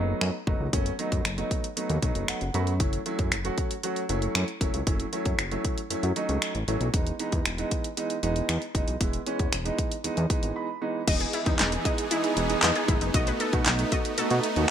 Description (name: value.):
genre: dance-pop.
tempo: 116 BPM.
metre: 4/4.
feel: straight.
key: unclear.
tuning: A4 = 440 Hz.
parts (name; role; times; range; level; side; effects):
warm baby grand piano; accompaniment; 0.0-14.7 s; E3 to B5; -30 LUFS; right 2 dB; sidechain pumping.
fat analog bass; bass; 0.0-14.7 s; E1 to B2; -29 LUFS; equal; sidechain pumping.
pop drum kit; drums; 0.2-14.7 s; crash cymbal, finger snaps, handclaps, hi-hat, kick drum, snare drum; -27 LUFS; equal; none.
supersaw chords; sustained chords; 11.1-14.7 s; E3 to G#4; -30 LUFS; right 2 dB; sidechain pumping.
wide unison pluck; arpeggios; 11.1-14.3 s; D#4 to D#5; -31 LUFS; left 4 dB; sidechain pumping, ping-pong delay.
room: light reverb, digital ambience.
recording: none.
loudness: -24 LUFS.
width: side -9 dB against mid.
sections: 0.0-11.1 A section; 11.1-14.7 B section.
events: grand piano fill 2.0-2.8, 10.3-11.1; break 10.6-11.1.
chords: 0.0 B7/F#; 2.8 F#m7; 6.9 Emaj7; 13.1 B7.